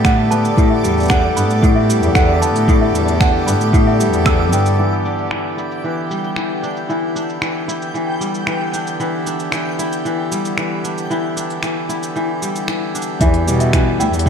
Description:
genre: folktronica.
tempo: 114 BPM.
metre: 4/4.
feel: straight.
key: E minor.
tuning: A4 = 439 Hz.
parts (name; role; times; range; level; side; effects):
small celesta; second line; 0.0-4.8, 13.2-14.3 s; E5 to E6; -22 LUFS; right 3 dB; vintage 12-bit sampler grit, ping-pong delay.
accordion; sustained chords; 0.0-14.3 s; D3 to A4; -23 LUFS; equal; low-pass filter.
kora; arpeggios; 0.0-14.3 s; A2 to E4; -20 LUFS; left 2 dB; low-pass filter, diffuse ambient delay.
muted cello; bass; 0.0-4.7, 13.2-14.3 s; D2 to B2; -17 LUFS; equal; none.
electronic kick drum; drums; 0.0-4.4, 13.2-14.3 s; none; -15 LUFS; equal; none.
organic electronic drum kit; drums; 0.0-14.3 s; cabasa, finger snaps, hi-hat; -25 LUFS; right 1 dB; low-pass filter on perc, low-pass filter on snare, low-pass filter on hats, low-pass filter on room.
backwards swelling texture; texture; 0.0-13.2 s; D5 to G6; -30 LUFS; equal; built-in reverb, ensemble chorus.
room: moderate lush hall reverb, RT60 2.1 s.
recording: dreamy mix soaked in reverb.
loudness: -15 LUFS.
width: side -7 dB against mid.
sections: 0.0-4.8 A section; 4.8-13.2 B section; 13.2-14.3 C section.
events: filter sweep on kora 4.8-13.2.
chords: 0.0 A9sus4; 4.8 Em7.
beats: 0.05 | 0.58 1.10 1.63 2.15 | 2.68 3.21 3.73 4.26 | 4.79 5.31 5.84 6.37 | 6.89 7.42 7.94 8.47 | 9.00 9.52 10.05 10.58 | 11.10 11.63 12.15 12.68 | 13.21 13.73 14.26.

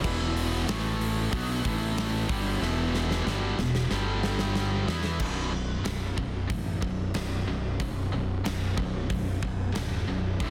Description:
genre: hard rock.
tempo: 93 BPM.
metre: 4/4.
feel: straight.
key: B minor.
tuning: A4 = 440 Hz.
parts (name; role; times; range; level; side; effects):
tonewheel organ; sustained chords; 0.0-5.2 s; E3 to F#5; -43 LUFS; equal; none.
high-gain distorted guitar; riff; 0.0-10.5 s; B1 to E4; -35 LUFS; equal; distortion.
tight distorted guitar; riff; 0.0-10.5 s; B1 to E4; -36 LUFS; equal; distortion.
fuzz fingered electric bass; bass; 0.0-10.5 s; B0 to E2; -34 LUFS; equal; overdrive.
huge arena drum kit; drums; 0.0-10.5 s; crash cymbal, hi-hat, kick drum, snare drum; -35 LUFS; equal; soft clipping on kick.
room: light reverb.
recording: dense, heavily limited modern master.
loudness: -29 LUFS.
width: mono.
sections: 0.0-5.2 A section; 5.2-10.5 B section.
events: drum fill 2.6-5.2.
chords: 0.0 E5; 0.7 A5; 1.3 E5; 1.7 A5; 2.3 E5; 3.9 G5; 4.9 E5; 5.2 Bm.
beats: | 0.04 0.69 1.33 1.98 | 2.62 3.27 3.91 4.56 | 5.21 5.85 6.50 7.15 | 7.80 8.45 9.10 9.75 | 10.40.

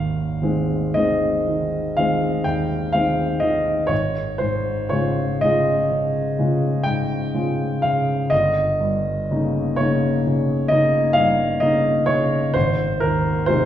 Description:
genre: classical, romantic nocturne for solo piano.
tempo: 38-44 BPM (dotted quarters).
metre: 9/8.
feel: rubato.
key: Ab major.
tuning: A4 = 440 Hz.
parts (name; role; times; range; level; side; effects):
warm concert grand piano; solo; 0.0-13.7 s; G1 to G5; -18 LUFS; equal; none.
room: wet recital hall reverb, RT60 1.7 s.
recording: heard from further back in the room.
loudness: -18 LUFS.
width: side -11 dB against mid.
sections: 0.0-13.7 A section.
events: none.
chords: 0.0 Ab; 3.9 Db/Ab; 8.3 Eb7/G; 12.5 Ab.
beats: 0.97 2.46 | 3.91 5.42 6.88 | 8.31 9.77 11.14 | 12.55.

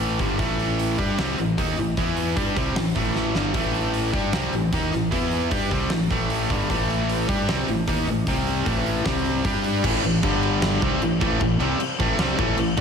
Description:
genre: hard rock.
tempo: 152 BPM.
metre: 4/4.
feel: straight.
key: A minor.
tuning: A4 = 444 Hz.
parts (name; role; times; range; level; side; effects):
distorted electric guitar; riff; 0.0-12.8 s; G2 to G4; -25 LUFS; right 9 dB; overdrive.
overdriven electric guitar; riff; 0.0-12.8 s; G2 to G4; -25 LUFS; left 8 dB; slapback echo.
fuzz fingered electric bass; bass; 0.0-12.8 s; G1 to G2; -28 LUFS; equal; overdrive.
huge arena drum kit; drums; 0.0-12.8 s; crash cymbal, hi-hat, kick drum, snare drum; -27 LUFS; equal; none.
room: moderate lush hall reverb, RT60 1.9 s, studio reverb.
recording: big arena sound.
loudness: -20 LUFS.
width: side -6 dB against mid.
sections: 0.0-9.8 A section; 9.8-12.8 B section.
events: drum fill 3.2-3.6.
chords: 0.0 Am; 2.0 E5; 2.4 Am; 5.1 E5; 5.5 Am; 8.3 C5; 8.7 A5; 9.1 C5; 9.5 G5; 9.8 A5; 10.2 G5; 10.8 Am.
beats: 0.00 | 0.39 0.79 1.19 1.58 | 1.98 2.37 2.76 3.16 | 3.55 3.95 4.34 4.73 | 5.13 5.52 5.92 6.31 | 6.70 7.09 7.49 7.88 | 8.28 8.67 9.06 9.45 | 9.84 10.23 10.63 11.02 | 11.41 11.80 12.19 12.58.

